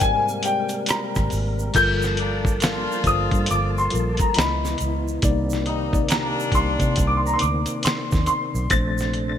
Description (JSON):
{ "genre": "R&B, neo-soul", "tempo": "69 BPM", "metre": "4/4", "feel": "swing 62% on 16ths", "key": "G minor", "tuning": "A4 = 440 Hz", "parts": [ { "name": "warm grand piano", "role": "melody", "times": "0.0-9.4 s", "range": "G5 to A6", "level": "-24 LUFS", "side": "left 2 dB", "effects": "lush chorus" }, { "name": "mellow tine electric piano", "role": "accompaniment", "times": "0.0-9.4 s", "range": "Bb2 to D#5", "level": "-27 LUFS", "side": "left 3 dB", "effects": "medium stereo tremolo" }, { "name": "tonewheel organ", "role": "sustained chords", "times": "0.0-9.4 s", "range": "C3 to A5", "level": "-34 LUFS", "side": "right 2 dB", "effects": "slow rotary speaker, chorus vibrato" }, { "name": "vintage muted fingered electric bass", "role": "bass", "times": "0.0-9.4 s", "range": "G1 to C3", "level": "-25 LUFS", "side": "equal", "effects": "none" }, { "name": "dusty soul sampler-style drum kit", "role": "drums", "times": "0.0-9.4 s", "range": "crash cymbal, hi-hat, kick drum, rim click, snare drum", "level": "-24 LUFS", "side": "equal", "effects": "none" }, { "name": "egg shaker and finger snaps", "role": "percussion", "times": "0.0-9.1 s", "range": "none", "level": "-34 LUFS", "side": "right 7 dB", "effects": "none" }, { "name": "warm horn section", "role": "stabs", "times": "2.2-7.4 s", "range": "D3 to F4", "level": "-30 LUFS", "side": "left 2 dB", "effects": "ping-pong delay" } ], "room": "light reverb, small room ambience", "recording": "bright 1980s-style digital production", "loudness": "-19 LUFS", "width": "side -9 dB against mid", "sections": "0.0-1.7 A section; 1.7-9.4 B section", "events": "none", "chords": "0.0 Abmaj9; 1.7 Gm9; 4.4 C#m9; 5.2 Cm9; 8.7 Bbmaj9", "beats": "0.01 0.88 | 1.75 2.62 3.49 4.36 | 5.23 6.10 6.97 7.83 | 8.71" }